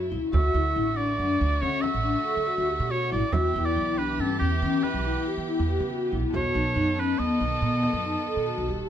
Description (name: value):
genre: contemporary instrumental, chamber music in an uneven meter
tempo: 140 BPM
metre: 7/4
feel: straight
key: E dorian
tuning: A4 = 435 Hz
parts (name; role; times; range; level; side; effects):
- clear oboe; melody; 0.0-8.9 s; G4 to E5; -28 LUFS; right 2 dB; none
- warm studio string section; sustained chords; 0.0-8.9 s; C#3 to A4; -34 LUFS; equal; none
- upright bass; bass; 0.0-8.9 s; D#1 to E3; -28 LUFS; right 2 dB; none
- vibraphone with soft mallets; arpeggios; 0.1-8.8 s; B3 to A4; -27 LUFS; left 3 dB; none
- frame drum; percussion; 0.1-8.6 s; none; -31 LUFS; right 3 dB; none
room: light reverb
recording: none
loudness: -23 LUFS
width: side -10 dB against mid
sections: 0.0-8.9 A section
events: none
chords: 0.3 D; 3.3 Em; 6.3 B7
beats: | 0.33 0.76 1.19 1.62 2.04 2.47 2.90 | 3.33 3.76 4.19 4.62 5.04 5.47 5.90 | 6.33 6.76 7.19 7.62 8.04 8.47